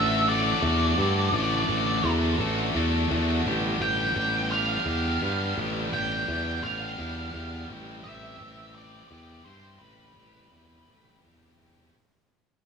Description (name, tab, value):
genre	post-rock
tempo	57 BPM (dotted quarters)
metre	6/8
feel	straight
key	unclear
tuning	A4 = 438 Hz
part	octave-fuzz lead guitar	melody	0.0-11.2 s	B4 to G5	-29 LUFS	equal	distortion, analog delay
part	distorted electric guitar	riff	0.0-11.9 s	G2 to A4	-29 LUFS	left 1 dB	overdrive
part	modern bright fingered electric bass	bass	0.0-11.9 s	A1 to G2	-28 LUFS	equal	none
room	digital ambience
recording	small room reverb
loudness	-23 LUFS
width	side -6 dB against mid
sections	0.0-12.0 A section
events	fade-out 0.0-12.0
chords	0.0 D/A; 3.5 G7/A; 7.7 Cmaj7/A